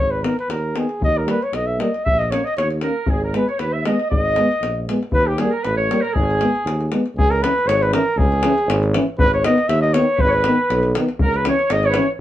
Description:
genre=balkan folk, Balkan brass band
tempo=118 BPM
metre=2/4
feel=swing 55% on 16ths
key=G# harmonic minor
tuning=A4 = 440 Hz
part: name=warm flugelhorn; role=melody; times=0.0-12.1 s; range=G4 to E5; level=-20 LUFS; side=equal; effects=none
part: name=mellow tuba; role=bass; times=0.0-12.0 s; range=G#1 to D#2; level=-22 LUFS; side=right 1 dB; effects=none
part: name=dark euphonium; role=accompaniment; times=0.2-12.1 s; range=A#3 to C#4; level=-22 LUFS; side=left 2 dB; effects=none
part: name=mellow trombone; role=accompaniment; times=0.2-12.1 s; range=D#3 to A#3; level=-27 LUFS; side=right 4 dB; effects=none
part: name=davul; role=percussion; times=0.2-12.1 s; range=none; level=-23 LUFS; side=left 1 dB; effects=none
part: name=bright clarinet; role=second line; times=2.1-6.9, 10.2-12.1 s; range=G4 to E5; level=-27 LUFS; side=right 3 dB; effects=none
room=wet small room reverb, RT60 0.5 s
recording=band playing live in one room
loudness=-16 LUFS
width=side -13 dB against mid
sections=0.0-7.2 A section; 7.2-12.2 B section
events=speeding up 0.0-12.2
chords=0.0 G#m; 1.0 D#; 2.0 A#madd11; 3.1 G#m; 5.1 D#; 6.2 G#m; 7.2 C#m; 9.2 G#m; 11.2 C#m

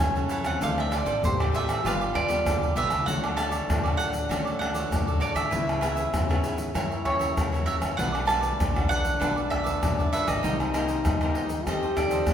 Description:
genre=samba and choro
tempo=98 BPM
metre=4/4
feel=straight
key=D major from 3.1 s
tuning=A4 = 440 Hz
part: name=mandolin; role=melody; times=0.0-12.3 s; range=C5 to A5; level=-29 LUFS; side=right 3 dB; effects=none
part: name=breathy trombone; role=second line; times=0.0-12.3 s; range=C#4 to G4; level=-32 LUFS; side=left 2 dB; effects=none
part: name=nylon-string guitar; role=accompaniment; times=0.0-12.3 s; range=F#2 to A4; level=-34 LUFS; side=left 3 dB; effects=none
part: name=upright bass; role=bass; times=0.0-12.3 s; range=G1 to F#2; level=-33 LUFS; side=equal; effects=none
part: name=cavaquinho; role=accompaniment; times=0.2-12.3 s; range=D4 to F#5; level=-34 LUFS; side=right 4 dB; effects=none
part: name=tube shaker, pandeiro, tamborim and surdo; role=percussion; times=0.2-12.3 s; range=none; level=-27 LUFS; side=equal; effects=none
room=wet recital hall reverb, RT60 1.4 s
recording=recorded in a church or concert hall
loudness=-23 LUFS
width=side -9 dB against mid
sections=0.0-3.1 A section; 3.1-12.3 B section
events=none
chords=0.0 F#m7; 0.6 Dm7; 1.8 G9; 3.1 Dmaj7; 5.5 C#m7; 6.8 F#7; 8.0 Bm7; 10.4 Cm7; 11.7 F7

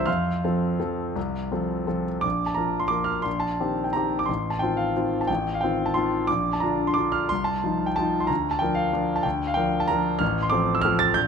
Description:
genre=classical, piano waltz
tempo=162-200 BPM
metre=3/4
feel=rubato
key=Bb major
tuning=A4 = 440 Hz
part: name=clear concert grand piano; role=solo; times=0.0-11.3 s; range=A1 to A6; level=-22 LUFS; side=equal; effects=none
room=moderate recital hall reverb, RT60 1.8 s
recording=close, detailed microphones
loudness=-22 LUFS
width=side -6 dB against mid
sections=0.0-2.2 A section; 2.2-11.3 B section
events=none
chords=0.1 F; 2.2 Bb5; 3.3 Cm7/Bb; 4.3 F7/A; 6.3 Bb; 7.3 F7/C; 8.3 Bb/D; 10.2 F/A

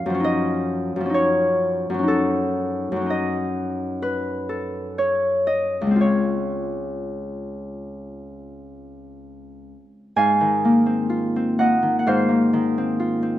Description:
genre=classical, solo harp piece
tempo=54-67 BPM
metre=4/4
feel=rubato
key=Ab mixolydian from 10.2 s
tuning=A4 = 440 Hz
part: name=Celtic harp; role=solo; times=0.0-13.4 s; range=Db2 to Bb5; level=-20 LUFS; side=left 1 dB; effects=none
room=wet recital hall reverb, RT60 1.6 s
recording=none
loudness=-19 LUFS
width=side -13 dB against mid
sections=0.0-10.2 A section; 10.2-13.4 B section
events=none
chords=0.0 Eb9/Gb; 2.1 Gbm6; 6.0 Dbmaj7; 10.2 Ab69

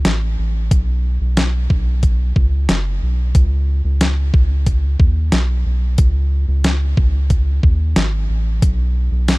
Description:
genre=dream pop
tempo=91 BPM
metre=4/4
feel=straight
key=unclear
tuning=A4 = 440 Hz
part: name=round analog bass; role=bass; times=0.0-9.4 s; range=F#1 to D#2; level=-16 LUFS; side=equal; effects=none
part: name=clean 12-bit digital drum machine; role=drums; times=0.1-9.4 s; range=hi-hat, kick drum, snare drum, tambourine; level=-16 LUFS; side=equal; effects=none
room=little or no reverb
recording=dark, warm production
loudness=-14 LUFS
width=side -23 dB against mid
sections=0.0-9.4 A section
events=none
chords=none

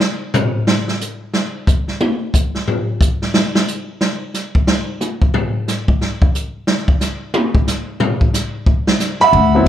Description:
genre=jazz piano trio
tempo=180 BPM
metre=4/4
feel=swing 63% on 8ths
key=unclear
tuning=A4 = 436 Hz
part: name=open jazz drum kit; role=drums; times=0.0-9.4 s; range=hi-hat, kick drum, ride cymbal, snare drum, toms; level=-15 LUFS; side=equal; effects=none
part: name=clear grand piano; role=melody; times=9.2-9.7 s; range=F#3 to B5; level=-10 LUFS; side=right 2 dB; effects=none
part: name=upright bass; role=bass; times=9.3-9.7 s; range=D2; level=-12 LUFS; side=left 2 dB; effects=none
room=light reverb, small room ambience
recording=live gig heard through the venue's PA, club reverb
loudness=-15 LUFS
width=side -11 dB against mid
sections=0.0-9.3 A section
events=drum solo 0.0-9.3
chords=none

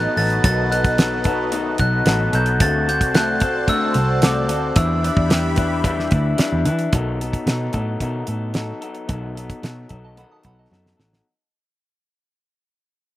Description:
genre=indie pop, bedroom pop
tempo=111 BPM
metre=4/4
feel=straight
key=unclear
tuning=A4 = 440 Hz
part: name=glockenspiel with soft plastic mallets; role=melody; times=0.0-6.6 s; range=D6 to A6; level=-23 LUFS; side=equal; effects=slapback echo
part: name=electric guitar through a small old amp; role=accompaniment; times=0.0-11.3 s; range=B2 to B4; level=-24 LUFS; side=left 3 dB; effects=warbly pitch drift
part: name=phased analog pad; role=sustained chords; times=0.0-6.9 s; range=F#4 to B5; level=-27 LUFS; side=right 1 dB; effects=phaser, chorus
part: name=vintage muted picked electric bass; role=bass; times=0.0-11.2 s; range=A1 to E3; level=-23 LUFS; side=equal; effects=none
part: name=damped 70s drum kit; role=drums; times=0.2-11.2 s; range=hi-hat, kick drum, snare drum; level=-19 LUFS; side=right 1 dB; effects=none
part: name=soft synth bell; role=second line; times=10.0-11.2 s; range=D#5 to D#6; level=-54 LUFS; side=right 3 dB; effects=chorus
room=little or no reverb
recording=recorded outdoors, with no room sound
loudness=-17 LUFS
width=side -15 dB against mid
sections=0.0-6.9 A section; 6.9-11.2 B section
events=fade-out 6.9-11.2; drum fill 10.7-11.2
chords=0.0 B7; 2.6 D7; 4.8 Em7; 6.9 B7

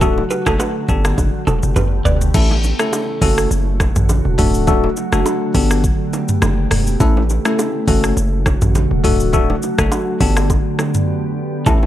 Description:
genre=afrobeats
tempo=103 BPM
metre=4/4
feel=swing 55% on 16ths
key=unclear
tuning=A4 = 440 Hz
part: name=bell-like tine electric piano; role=accompaniment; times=0.0-11.9 s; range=A3 to A4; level=-19 LUFS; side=left 3 dB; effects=phaser
part: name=glassy FM pad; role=sustained chords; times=0.0-11.9 s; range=C#3 to G4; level=-22 LUFS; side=right 1 dB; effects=ensemble chorus, built-in reverb, sidechain pumping
part: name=electric guitar at the edge of break-up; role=riff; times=0.0-2.2, 11.7-11.8 s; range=E4 to D5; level=-22 LUFS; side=right 3 dB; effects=slapback echo
part: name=hard-hitting 808-style bass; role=bass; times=0.0-11.9 s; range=D1 to A1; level=-17 LUFS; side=equal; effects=none
part: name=afro-pop drum kit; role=drums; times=0.0-11.8 s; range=crash cymbal, hi-hat, kick drum, rim click, shaker, toms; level=-18 LUFS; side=equal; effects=none
part: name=congas and bongos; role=percussion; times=0.0-11.9 s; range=none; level=-25 LUFS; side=right 3 dB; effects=none
room=digital ambience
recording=none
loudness=-14 LUFS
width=side -13 dB against mid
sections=0.0-2.3 A section; 2.3-11.9 B section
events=drum fill 1.2-2.3; break 11.1-11.7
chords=0.0 D; 0.9 Gadd9; 2.3 A; 3.2 F#m; 4.4 D; 5.5 Gadd9; 7.0 A; 7.9 F#m; 9.0 D; 10.2 Gadd9

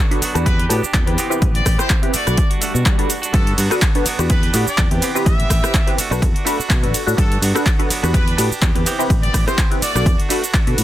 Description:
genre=filtered disco house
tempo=125 BPM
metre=4/4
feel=swing 55% on 16ths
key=A dorian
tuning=A4 = 440 Hz
part: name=direct-recorded clean electric guitar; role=riff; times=0.0-10.8 s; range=E3 to G4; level=-26 LUFS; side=right 3 dB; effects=sidechain pumping
part: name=funky polysynth comp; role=accompaniment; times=0.1-10.8 s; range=C4 to B4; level=-23 LUFS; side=left 1 dB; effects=chorus, phaser, sidechain pumping
part: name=punchy analog drum machine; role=drums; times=0.1-10.8 s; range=cabasa, handclaps, hi-hat, ride cymbal, rim click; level=-22 LUFS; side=equal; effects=overdrive, sidechain pumping on hats, sidechain pumping on perc, sidechain pumping on cymbals
part: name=fingered electric bass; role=bass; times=0.2-10.8 s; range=A1 to B2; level=-20 LUFS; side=equal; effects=sidechain pumping
part: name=bright horn section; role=melody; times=0.5-10.2 s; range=A4 to E5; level=-27 LUFS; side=equal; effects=sidechain pumping, dub echo
part: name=electronic kick drum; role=drums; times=0.5-10.6 s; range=none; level=-17 LUFS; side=equal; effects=overdrive
part: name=swell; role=sound effects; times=2.5-3.3 s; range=none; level=-30 LUFS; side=left 2 dB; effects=none
room=digital ambience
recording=dense, heavily limited modern master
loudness=-14 LUFS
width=side -13 dB against mid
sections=0.0-10.8 A section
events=swell 2.5-3.3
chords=0.5 Em7; 1.2 Am9; 2.1 Bm7; 3.3 Gmaj7; 4.3 Em7; 5.0 Am9; 6.0 Bm7; 7.2 Gmaj7; 8.1 Em7; 8.9 Am9; 9.8 Bm7

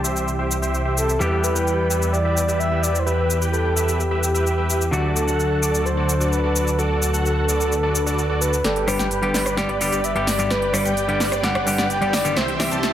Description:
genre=EDM, festival progressive house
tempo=129 BPM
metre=4/4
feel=straight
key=G major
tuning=A4 = 440 Hz
part: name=semi-hollow electric guitar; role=accompaniment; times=0.0-12.8 s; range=G2 to G4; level=-26 LUFS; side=left 1 dB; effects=none
part: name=lush unison pad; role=sustained chords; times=0.0-12.9 s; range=C3 to D5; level=-31 LUFS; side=equal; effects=chorus
part: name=dense compressed supersaw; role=riff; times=0.0-12.9 s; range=F#4 to A5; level=-26 LUFS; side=right 1 dB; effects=low-pass filter
part: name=wide detuned saw bass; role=bass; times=0.0-12.9 s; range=G1 to E2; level=-25 LUFS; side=equal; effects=chorus
part: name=big-room dance drum kit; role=drums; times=0.0-12.9 s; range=hi-hat, rim click, shaker, snare drum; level=-26 LUFS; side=left 1 dB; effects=overdrive
part: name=breathy flute-like synth lead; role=melody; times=1.0-12.9 s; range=F#4 to G5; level=-24 LUFS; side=equal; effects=chorus, digital delay
part: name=plucky unison lead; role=arpeggios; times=8.6-12.9 s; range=D5 to A5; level=-32 LUFS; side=right 1 dB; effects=none
part: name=riser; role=sound effects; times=11.6-12.9 s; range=none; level=-37 LUFS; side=right 1 dB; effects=none
room=moderate lush hall reverb, RT60 2.0 s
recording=high-pass filter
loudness=-18 LUFS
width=side -11 dB against mid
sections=0.0-8.6 A section; 8.6-12.9 B section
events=build-up 8.6-12.9; drum fill 8.6-12.9; filter sweep on supersaw synth 8.6-12.9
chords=0.0 C; 1.2 Em; 4.9 D; 8.6 G; 12.4 C

